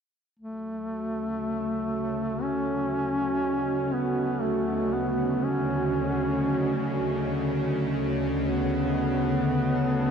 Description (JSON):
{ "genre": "dark ambient drone", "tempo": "60 BPM", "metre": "4/4", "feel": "straight", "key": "unclear", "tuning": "A4 = 442 Hz", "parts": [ { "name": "mellow duduk", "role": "melody", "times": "0.4-10.1 s", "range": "A3 to C#4", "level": "-28 LUFS", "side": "equal", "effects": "shimmer reverb, tape echo" }, { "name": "dark analog pad", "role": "sustained chords", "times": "0.4-10.1 s", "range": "F#4 to Eb5", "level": "-31 LUFS", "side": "right 3 dB", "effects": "chorus, shimmer reverb" }, { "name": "bowed-like drone", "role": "drone", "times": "1.2-10.1 s", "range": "D2 to C#3", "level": "-28 LUFS", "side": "left 1 dB", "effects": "built-in reverb" }, { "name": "backwards swelling texture", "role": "texture", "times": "9.1-10.1 s", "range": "A4", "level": "-44 LUFS", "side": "left 2 dB", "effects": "none" } ], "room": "wet huge ambient reverb, RT60 8.4 s", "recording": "dark, warm production", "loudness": "-24 LUFS", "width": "side -7 dB against mid", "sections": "0.4-10.1 A section", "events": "none", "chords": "0.4 F#m", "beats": "| 0.38 1.40 2.42 3.43 | 4.44 5.44 6.45 7.45 | 8.46 9.45" }